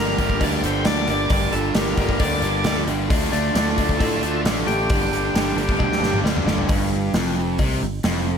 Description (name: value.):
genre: classic rock.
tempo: 134 BPM.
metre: 4/4.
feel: straight.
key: G minor.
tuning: A4 = 441 Hz.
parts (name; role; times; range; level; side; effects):
overdriven tonewheel organ; melody; 0.0-6.2 s; D4 to D5; -25 LUFS; left 1 dB; slow rotary speaker, tape echo.
dark smooth lead guitar; second line; 0.0-6.2 s; A3 to Bb4; -32 LUFS; right 4 dB; overdrive, tape echo.
crunchy overdriven guitar; riff; 0.0-8.4 s; F2 to D4; -26 LUFS; left 13 dB; none.
distorted electric guitar; riff; 0.0-8.4 s; F2 to G4; -26 LUFS; right 12 dB; distortion.
fingered electric bass; bass; 0.0-8.4 s; F1 to A2; -26 LUFS; equal; none.
gated 80s drum kit; drums; 0.1-8.1 s; hi-hat, kick drum, snare drum, toms; -23 LUFS; equal; none.
cowbell; percussion; 0.4-8.1 s; none; -36 LUFS; left 5 dB; none.
room: light reverb, small room reverb.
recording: none.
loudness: -18 LUFS.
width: side -7 dB against mid.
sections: 0.0-6.7 A section; 6.7-8.4 B section.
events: drum fill 5.8-6.7.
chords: 0.0 Gm; 3.1 Dm; 4.9 Gm; 6.7 G5.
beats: 0.41 0.85 | 1.30 1.75 2.20 2.65 | 3.10 3.55 3.99 4.44 | 4.89 5.34 5.79 6.24 | 6.69 7.14 7.59 8.04.